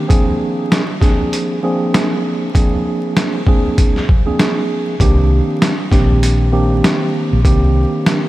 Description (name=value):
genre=hip hop, boom-bap hip-hop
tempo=98 BPM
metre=4/4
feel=swing 59% on 16ths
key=unclear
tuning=A4 = 441 Hz
part: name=mellow tine electric piano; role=accompaniment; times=0.0-8.3 s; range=Eb3 to Ab4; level=-17 LUFS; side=right 1 dB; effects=fast stereo tremolo, high-pass filter, low-pass filter
part: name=trip hop sampler-style drum kit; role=drums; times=0.1-8.2 s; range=hi-hat, kick drum, snare drum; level=-16 LUFS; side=equal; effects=none
part: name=hollow-body short-scale fingered electric bass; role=bass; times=5.0-7.8 s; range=Bb1 to C2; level=-14 LUFS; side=equal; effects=none
room=light reverb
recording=vinyl crackle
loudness=-12 LUFS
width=side -16 dB against mid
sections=0.0-8.3 A section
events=none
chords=0.1 Bb7; 5.0 Cm7